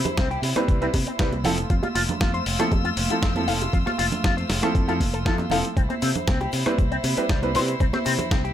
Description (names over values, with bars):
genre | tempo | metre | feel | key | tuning
nu-disco, nu disco | 118 BPM | 4/4 | straight | C major | A4 = 440 Hz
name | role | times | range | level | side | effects
warm chamber string section | sustained chords | 0.0-8.5 s | A3 to E6 | -30 LUFS | equal | sidechain pumping
fingered electric bass | bass | 0.0-8.5 s | F1 to C3 | -28 LUFS | equal | sidechain pumping
dusty soul sampler-style drum kit | drums | 0.1-8.5 s | hi-hat, rim click, snare drum | -29 LUFS | left 2 dB | small room ambience
bongos, congas and egg shaker | percussion | 0.1-8.4 s | none | -31 LUFS | right 4 dB | none
electric guitar with an envelope filter | riff | 0.2-8.5 s | G3 to F5 | -28 LUFS | left 3 dB | analog chorus, ping-pong delay
electronic kick drum | drums | 0.2-8.4 s | none | -23 LUFS | equal | small room ambience
clear baby grand piano | accompaniment | 0.6-7.7 s | F3 to B4 | -27 LUFS | right 2 dB | ping-pong delay
room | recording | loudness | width
small room ambience | none | -20 LUFS | side -11 dB against mid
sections
0.0-8.5 A section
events
none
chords
0.0 Cmaj7; 1.4 Fmaj7; 5.8 C